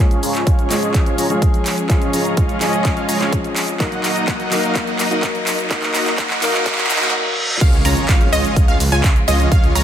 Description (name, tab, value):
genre	EDM, festival progressive house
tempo	126 BPM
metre	4/4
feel	straight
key	Db major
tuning	A4 = 440 Hz
part	warm grand piano	accompaniment	0.0-7.6 s	F3 to Bb4	-24 LUFS	left 3 dB	sidechain pumping, dub echo
part	muted studio string section	sustained chords	0.0-9.8 s	Db3 to Eb5	-26 LUFS	equal	sidechain pumping
part	dense compressed supersaw	riff	0.0-9.8 s	Ab3 to Bb5	-21 LUFS	right 1 dB	sidechain pumping, low-pass filter, dub echo
part	big-room dance drum kit	drums	0.0-9.8 s	crash cymbal, finger snaps, handclaps, hi-hat, shaker	-22 LUFS	right 1 dB	none
part	riser, reverse cymbal and impact	sound effects	2.5-9.5 s	none	-26 LUFS	right 1 dB	none
part	electronic kick drum	drums	0.5-9.6 s	none	-16 LUFS	equal	none
part	wide unison pluck	arpeggios	7.6-9.8 s	Eb5 to Bb5	-22 LUFS	right 1 dB	sidechain pumping, dub echo
part	detuned saw bass	bass	7.6-9.8 s	Ab1 to Db2	-19 LUFS	equal	sidechain pumping
room	light reverb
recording	high-pass filter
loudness	-14 LUFS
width	side -10 dB against mid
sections	0.0-7.6 A section; 7.6-9.8 B section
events	build-up 0.0-7.6; drum fill 0.0-7.1; filter sweep on supersaw synth 0.0-7.6; filter sweep 0.0-7.6; reverse cymbal 6.7-7.6; drop 7.6-9.8; impact 7.6-9.5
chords	0.0 Db; 3.8 Ebm; 7.6 Db